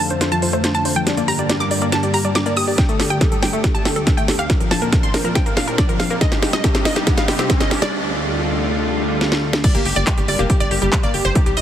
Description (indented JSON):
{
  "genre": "uplifting trance",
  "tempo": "140 BPM",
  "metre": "4/4",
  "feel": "straight",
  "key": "G minor",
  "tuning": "A4 = 440 Hz",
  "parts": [
    { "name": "wide unison pluck", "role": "melody", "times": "0.0-11.6 s", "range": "G4 to Eb6", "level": "-24 LUFS", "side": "right 1 dB", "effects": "sidechain pumping, ping-pong delay" },
    { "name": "plucky unison lead", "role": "second line", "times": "0.0-11.6 s", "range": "G4 to Eb6", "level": "-28 LUFS", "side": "equal", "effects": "phaser, sidechain pumping, ping-pong delay" },
    { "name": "lush unison pad", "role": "sustained chords", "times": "0.0-11.6 s", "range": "D2 to G4", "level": "-24 LUFS", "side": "equal", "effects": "chorus, sidechain pumping" },
    { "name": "analog pluck", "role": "arpeggios", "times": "0.0-11.6 s", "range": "F3 to G4", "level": "-26 LUFS", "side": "left 4 dB", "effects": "chorus, sidechain pumping, ping-pong delay" },
    { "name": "techno drum kit", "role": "drums", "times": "0.0-11.6 s", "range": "crash cymbal, handclaps, hi-hat, snare drum", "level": "-22 LUFS", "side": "equal", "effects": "none" },
    { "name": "electronic kick drum", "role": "drums", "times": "2.8-11.4 s", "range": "none", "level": "-18 LUFS", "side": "equal", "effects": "none" },
    { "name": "riser and swell", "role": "sound effects", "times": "5.0-9.6 s", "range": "none", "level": "-29 LUFS", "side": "right 1 dB", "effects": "none" },
    { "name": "tight sequencer bass", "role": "bass", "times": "9.7-11.6 s", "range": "F1 to C2", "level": "-22 LUFS", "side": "equal", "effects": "sidechain pumping" }
  ],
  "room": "moderate huge ambient reverb, RT60 7.2 s",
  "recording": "heavily compressed radio sound, multiband compression",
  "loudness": "-15 LUFS",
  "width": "side -10 dB against mid",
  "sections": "0.0-9.6 A section; 9.6-11.6 B section",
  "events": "build-up 0.0-9.6; drum fill 0.0-7.9, 9.2-9.6; filter sweep on synth arpeggio sound 0.0-9.6; riser 5.0-7.9; break 7.9-9.6; swell 8.9-9.6; drop 9.6-11.6",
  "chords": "0.0 F6; 1.1 Gm; 2.8 Dsus4; 4.5 Bbadd9; 6.2 Cmadd9; 7.9 Dm; 9.6 Gm"
}